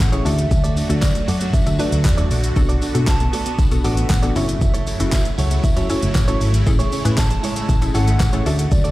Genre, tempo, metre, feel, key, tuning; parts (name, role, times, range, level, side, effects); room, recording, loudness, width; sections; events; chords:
dance-pop; 117 BPM; 4/4; straight; A4 = 440 Hz
hollow clarinet-like synth lead; melody; 0.0-8.9 s; C#5 to B5; -29 LUFS; equal; chorus, digital delay
supersaw pad; sustained chords; 0.0-8.9 s; C#3 to F#4; -29 LUFS; right 1 dB; phaser, sidechain pumping
soft round pluck; arpeggios; 0.0-8.9 s; F#3 to A4; -31 LUFS; right 3 dB
direct-recorded clean electric guitar; riff; 0.0-8.9 s; E4 to D5; -30 LUFS; right 6 dB; lush chorus
vintage muted fingered electric bass; bass; 0.0-8.9 s; F#1 to D3; -19 LUFS; equal; sidechain pumping
deep house drum kit; drums; 0.0-8.9 s; handclaps, hi-hat, kick drum, shaker, snare drum; -19 LUFS; equal
tambourine; percussion; 0.0-8.9 s; -38 LUFS; left 3 dB
hollow square pluck; accompaniment; 0.1-8.9 s; A3 to B4; -26 LUFS; left 3 dB; chorus, sidechain pumping
digital ambience; played on a big sound system in a bare room, large studio reverb; -16 LUFS; side -17 dB against mid
0.0-8.9 A section
0.3 D; 2.6 Bm7; 4.4 F#m7; 6.7 Amaj7